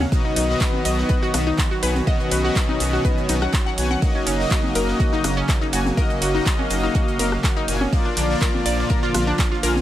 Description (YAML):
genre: progressive house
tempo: 123 BPM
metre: 4/4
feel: straight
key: unclear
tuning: A4 = 443 Hz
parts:
  - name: warm analog pad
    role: sustained chords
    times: 0.0-9.8 s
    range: Db3 to F5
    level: -27 LUFS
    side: right 2 dB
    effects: chorus, sidechain pumping
  - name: analog pluck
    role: arpeggios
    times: 0.0-9.7 s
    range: Db4 to F#5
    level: -26 LUFS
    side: left 1 dB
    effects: chorus, sidechain pumping, dub echo
  - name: round analog bass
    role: bass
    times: 0.0-9.8 s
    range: Gb1 to B1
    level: -24 LUFS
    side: equal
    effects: tube saturation, sidechain pumping
  - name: electronic congas, rim click and cowbell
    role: percussion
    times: 0.0-9.8 s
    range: none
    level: -29 LUFS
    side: left 2 dB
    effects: sidechain pumping on perc, sidechain pumping on snare
  - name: soft supersaw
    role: stabs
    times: 0.1-9.7 s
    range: Bb2 to Ab5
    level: -25 LUFS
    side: left 2 dB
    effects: sidechain pumping, dub echo
  - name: damped 70s drum kit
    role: drums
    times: 0.1-9.8 s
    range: hi-hat, snare drum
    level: -37 LUFS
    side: right 4 dB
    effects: none
  - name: electronic kick drum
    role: drums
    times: 0.1-9.5 s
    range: none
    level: -21 LUFS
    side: equal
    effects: none
  - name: deep house drum kit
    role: drums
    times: 0.4-9.7 s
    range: handclaps, hi-hat, ride cymbal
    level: -28 LUFS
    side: equal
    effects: sidechain pumping on hats, sidechain pumping on cymbals
room: light reverb, digital ambience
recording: none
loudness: -18 LUFS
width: side -13 dB against mid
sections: 0.0-9.8 A section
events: none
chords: 0.1 B; 4.0 Gb6; 7.9 Bb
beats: | 0.12 0.61 1.10 1.58 | 2.07 2.56 3.05 3.54 | 4.02 4.51 5.00 5.49 | 5.97 6.46 6.95 7.44 | 7.92 8.41 8.90 9.39